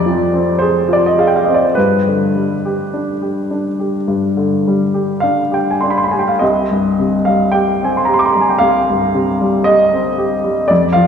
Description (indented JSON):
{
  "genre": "classical, romantic nocturne for solo piano",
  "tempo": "50-59 BPM",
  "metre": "4/4",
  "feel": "rubato",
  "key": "C minor",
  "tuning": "A4 = 440 Hz",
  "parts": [
    { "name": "warm baby grand piano", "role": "solo", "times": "0.0-11.1 s", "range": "C2 to D6", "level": "-12 LUFS", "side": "equal", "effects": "none" }
  ],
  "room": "wet church reverb, RT60 3.1 s",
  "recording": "recorded in a church or concert hall",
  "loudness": "-12 LUFS",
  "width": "side -7 dB against mid",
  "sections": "0.0-11.1 A section",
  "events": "none",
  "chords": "0.0 Fm; 1.8 G; 6.4 Cm",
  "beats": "0.62 | 1.76 2.93 4.07 5.23 | 6.42 7.54 8.63 9.68 | 10.70"
}